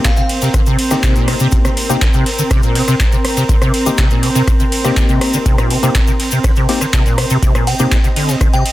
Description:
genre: acid house.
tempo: 122 BPM.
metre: 4/4.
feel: straight.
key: C minor.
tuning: A4 = 440 Hz.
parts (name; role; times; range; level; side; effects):
glassy synth bell; melody; 0.0-0.3, 7.7-8.7 s; F5 to G5; -24 LUFS; equal; chorus, analog delay.
liquid acid bass; riff; 0.0-8.6 s; Bb2 to D3; -17 LUFS; equal; tube saturation, ensemble chorus, sidechain pumping, tape echo.
percussive organ stab; stabs; 0.0-8.0 s; Bb3 to G4; -21 LUFS; left 3 dB; chorus, tape echo.
booming analog drum machine; drums; 0.0-8.7 s; handclaps, hi-hat, ride cymbal, rim click; -21 LUFS; equal; overdrive.
dusty soul sampler-style drum kit; drums; 0.0-8.7 s; hi-hat, snare drum; -30 LUFS; left 1 dB; none.
electronic kick drum; drums; 0.0-8.5 s; none; -14 LUFS; equal; overdrive.
cabasa; percussion; 0.0-8.6 s; none; -27 LUFS; left 5 dB; none.
dark studio string section; texture; 0.0-8.7 s; C4 to Eb5; -20 LUFS; right 1 dB; sidechain pumping.
room: light reverb.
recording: dense, heavily limited modern master.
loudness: -11 LUFS.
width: side -16 dB against mid.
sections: 0.0-8.7 A section.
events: none.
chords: 0.0 Cm7.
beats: 0.05 0.54 1.03 | 1.52 2.02 2.51 3.00 | 3.49 3.98 4.47 4.97 | 5.46 5.95 6.44 6.93 | 7.43 7.92 8.41.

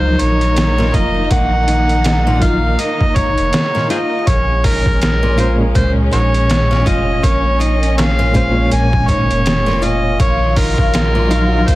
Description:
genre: trip hop.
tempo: 81 BPM.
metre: 4/4.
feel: swing 59% on 16ths.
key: Bb minor.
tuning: A4 = 437 Hz.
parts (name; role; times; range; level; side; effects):
overdriven harmonica; melody; 0.0-11.8 s; Gb4 to Ab5; -18 LUFS; right 1 dB; vintage 12-bit sampler grit, tape echo.
reed electric piano; accompaniment; 0.0-11.8 s; Bb2 to Db5; -20 LUFS; equal; overdrive, fast tremolo, harmonic tremolo.
muted studio string section; sustained chords; 0.0-11.8 s; Eb3 to F4; -22 LUFS; left 1 dB; vintage 12-bit sampler grit.
flamenco guitar; arpeggios; 0.0-11.8 s; Bb2 to F4; -23 LUFS; left 1 dB; tape echo.
soft dub sub bass; bass; 0.0-11.8 s; F1 to Db2; -17 LUFS; equal; none.
trip hop sampler-style drum kit; drums; 0.2-11.8 s; hi-hat, kick drum, snare drum; -18 LUFS; equal; overdrive.
room: small room ambience.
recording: dense, heavily limited modern master, vinyl crackle.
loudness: -12 LUFS.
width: side -17 dB against mid.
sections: 0.0-11.8 A section.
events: none.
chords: 0.0 Ebmadd9; 4.3 Bbm7; 10.2 Ebmadd9.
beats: 0.57 | 1.31 2.05 2.79 3.53 | 4.27 5.01 5.75 6.49 | 7.23 7.97 8.71 9.46 | 10.20 10.94 11.68.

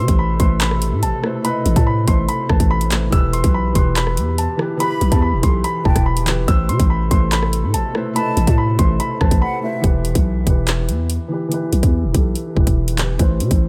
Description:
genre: hip hop, drill.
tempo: 143 BPM.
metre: 4/4.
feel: half-time.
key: E harmonic minor.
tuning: A4 = 441 Hz.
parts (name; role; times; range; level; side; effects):
warm concert grand piano; melody; 0.0-9.6 s; A5 to E6; -26 LUFS; equal; dub echo.
felt-muted upright piano; accompaniment; 0.0-13.7 s; E3 to D#5; -26 LUFS; equal; low-pass filter, dub echo.
warbly tape-like pad; sustained chords; 0.0-9.8 s; B2 to A4; -32 LUFS; equal; chorus, built-in reverb.
growling 808-style bass; bass; 0.0-13.7 s; D#1 to C3; -21 LUFS; equal; none.
drill drum kit; drums; 0.1-13.6 s; handclaps, hi-hat, kick drum, rim click; -20 LUFS; equal; none.
breathy mellow silver concert flute; second line; 4.8-9.8 s; E5 to B5; -32 LUFS; equal; dub echo.
room: digital ambience.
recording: echo-heavy mix.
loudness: -17 LUFS.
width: mono.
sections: 0.0-9.8 A section; 9.8-13.7 B section.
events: break 9.4-9.8.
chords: 0.0 Amadd9; 3.1 Em; 6.5 Amadd9; 9.8 Em.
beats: 0.19 0.61 1.03 | 1.45 1.86 2.29 2.71 | 3.12 3.54 3.96 4.38 | 4.80 5.22 5.64 6.06 | 6.48 6.90 7.32 7.74 | 8.16 8.58 9.00 9.42 | 9.84 10.26 10.68 11.10 | 11.52 11.94 12.36 12.78 | 13.19 13.61.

